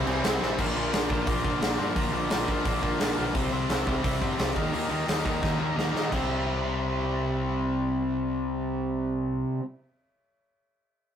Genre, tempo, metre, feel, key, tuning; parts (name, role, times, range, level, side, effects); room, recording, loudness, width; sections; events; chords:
punk rock; 173 BPM; 4/4; straight; A4 = 441 Hz
biting overdriven guitar; riff; 0.0-9.6 s; Bb2 to Eb4; -29 LUFS; left 5 dB
sludgy distorted guitar; riff; 0.0-9.6 s; Bb2 to G4; -31 LUFS; right 6 dB; overdrive
growling picked electric bass; bass; 0.0-9.4 s; F1 to Bb2; -33 LUFS; equal; overdrive
big rock drum kit; drums; 0.1-6.2 s; crash cymbal, hi-hat, kick drum, snare drum; -29 LUFS; equal
moderate studio reverb, RT60 0.6 s; rough rehearsal-room recording, warm saturation; -25 LUFS; side -9 dB against mid
0.6-6.1 A section; 6.1-8.9 B section
drum fill 0.4, 5.4-6.1
0.0 C; 0.6 Bb; 3.3 C; 4.6 Eb; 6.1 C